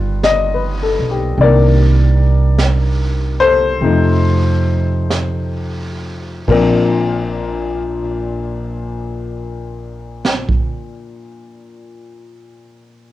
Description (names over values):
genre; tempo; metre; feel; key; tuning
jazz ballad; 42-53 BPM; 4/4; swing 67% on 8ths; Bb major; A4 = 441 Hz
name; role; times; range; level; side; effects
warm baby grand piano; accompaniment; 0.0-13.1 s; Bb2 to Eb5; -16 LUFS; left 4 dB; cassette tape
upright bass; bass; 0.0-10.5 s; G1 to F2; -17 LUFS; right 2 dB; none
jazz brush drum kit; drums; 0.2-10.7 s; brushed snare drum, hi-hat, kick drum, ride cymbal, snare drum; -22 LUFS; right 2 dB; cassette tape
room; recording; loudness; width
light reverb; home recording on cassette; -13 LUFS; side -15 dB against mid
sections
0.0-1.4 A section; 1.4-6.5 B section; 6.5-12.1 C section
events
slowing down 0.0-6.5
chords
0.0 G7b13; 1.4 Cm9; 3.8 F7; 6.5 Bbadd9